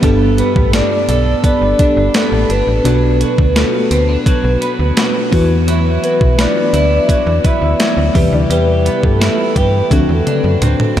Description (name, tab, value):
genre	1980s-style pop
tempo	85 BPM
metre	4/4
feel	straight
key	G major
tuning	A4 = 440 Hz
part	FM electric piano with soft pad layer	accompaniment	0.0-11.0 s	G2 to B4	-18 LUFS	left 1 dB	chorus, tremolo
part	twelve-string electric guitar	riff	0.0-11.0 s	F#3 to A4	-21 LUFS	right 3 dB	lush chorus, analog delay
part	slap-like FM bass	bass	0.0-11.0 s	G1 to G2	-15 LUFS	equal	none
part	clean 12-bit digital drum machine	drums	0.0-11.0 s	hi-hat, kick drum, snare drum, toms	-17 LUFS	equal	none
part	soft octave-layered synth lead	melody	0.4-10.6 s	A4 to E5	-17 LUFS	left 1 dB	chorus, tremolo, analog delay
room	wet huge ambient reverb, RT60 7.2 s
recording	dreamy mix soaked in reverb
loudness	-11 LUFS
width	side -11 dB against mid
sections	0.0-11.0 A section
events	drum fill 9.9-11.0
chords	0.0 Gadd9; 2.9 Bm; 5.3 Esus2; 8.1 Cmaj7; 9.9 D7